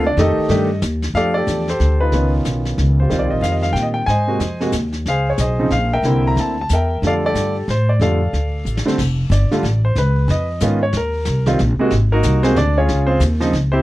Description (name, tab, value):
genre	jazz piano trio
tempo	184 BPM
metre	3/4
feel	swing 62% on 8ths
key	unclear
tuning	A4 = 438 Hz
part	clear concert grand piano	melody	0.0-13.8 s	C3 to Bb5	-18 LUFS	equal	none
part	upright bass	bass	0.0-13.8 s	F1 to Bb2	-18 LUFS	equal	none
part	vintage brush drum kit	drums	0.2-13.8 s	brushed snare drum, crash cymbal, hi-hat, kick drum, snare drum	-29 LUFS	left 1 dB	none
room	little or no reverb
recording	dry, close 1970s-style studio recording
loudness	-15 LUFS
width	side -16 dB against mid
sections	0.0-1.1 A section; 1.1-9.0 B section; 9.0-13.8 C section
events	drum fill 8.7-9.0; grand piano solo 9.0-13.8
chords	0.2 F9; 1.1 F69; 2.1 Db9; 3.1 Eb69; 4.1 Ab9; 5.1 Dbmaj9; 6.0 C9; 7.0 F69; 10.0 Db9; 10.9 Eb5; 11.9 Ab9; 12.9 Dbmaj9